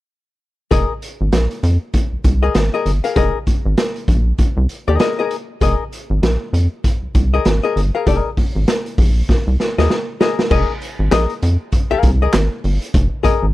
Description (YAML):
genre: funk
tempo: 98 BPM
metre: 4/4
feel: swing 60% on 16ths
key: F minor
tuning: A4 = 440 Hz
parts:
  - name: archtop guitar, miked and amplified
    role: accompaniment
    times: 0.7-13.5 s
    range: Ab4 to F5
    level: -19 LUFS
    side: left 6 dB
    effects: none
  - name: rubbery square bass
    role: bass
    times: 0.7-13.5 s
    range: F1 to F2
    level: -16 LUFS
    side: equal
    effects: none
  - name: raw garage drum kit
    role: drums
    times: 0.7-13.4 s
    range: crash cymbal, handclaps, hi-hat, kick drum, snare drum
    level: -18 LUFS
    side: equal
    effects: none
room: small room ambience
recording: lossy compression artefacts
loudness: -15 LUFS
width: side -17 dB against mid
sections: 0.7-10.5 A section; 10.5-13.5 B section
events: drum fill 9.3-10.5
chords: 0.7 Fm11